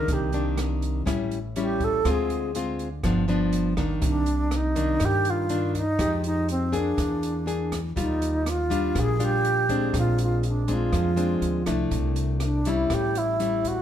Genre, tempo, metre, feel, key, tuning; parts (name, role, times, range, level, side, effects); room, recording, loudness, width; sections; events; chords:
bossa nova; 122 BPM; 4/4; straight; C minor; A4 = 441 Hz
alto flute; melody; 0.0-13.8 s; C4 to Bb4; -26 LUFS; right 2 dB; plate reverb
nylon-string guitar; accompaniment; 0.0-13.8 s; G2 to Ab4; -27 LUFS; left 2 dB
upright bass; bass; 0.0-13.8 s; G1 to G2; -28 LUFS; right 1 dB
open jazz drum kit; drums; 0.1-13.8 s; hi-hat, kick drum, rim click; -32 LUFS; right 1 dB
moderate studio reverb, RT60 0.7 s; heard from further back in the room; -22 LUFS; side -10 dB against mid
0.0-4.0 A section; 4.0-13.8 B section
alto flute solo 0.0-4.0
0.1 Cm9; 1.1 A7; 2.0 Dm7b5; 3.0 G7; 4.0 Cm9; 6.0 Fm9; 7.0 E7#11; 8.0 Ebmaj9; 9.9 Bb9; 11.9 C69; 12.9 A7